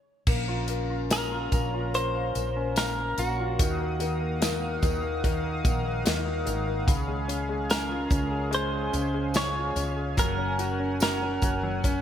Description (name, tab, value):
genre	pop ballad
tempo	73 BPM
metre	4/4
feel	straight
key	unclear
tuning	A4 = 445 Hz
part	clear concert grand piano	accompaniment	0.3-12.0 s	Db3 to F5	-31 LUFS	left 3 dB	none
part	chorused pulse-width pad	sustained chords	0.3-12.0 s	Db4 to Eb6	-34 LUFS	right 1 dB	none
part	woody fretless electric bass	bass	0.3-12.0 s	Gb1 to Eb2	-32 LUFS	equal	none
part	modern studio drum kit	drums	0.3-12.0 s	crash cymbal, hi-hat, kick drum, snare drum	-28 LUFS	equal	none
part	tambourine	percussion	0.3-12.0 s	none	-42 LUFS	right 9 dB	none
part	direct-recorded clean electric guitar	melody	1.1-11.8 s	Gb4 to Db5	-31 LUFS	right 1 dB	lush chorus
room	moderate plate reverb, RT60 2.9 s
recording	bright 1980s-style digital production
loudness	-25 LUFS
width	side -10 dB against mid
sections	0.3-12.0 A section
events	stop 0.0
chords	0.3 Bbm; 3.6 Ebmadd9; 6.9 Db; 10.2 Gb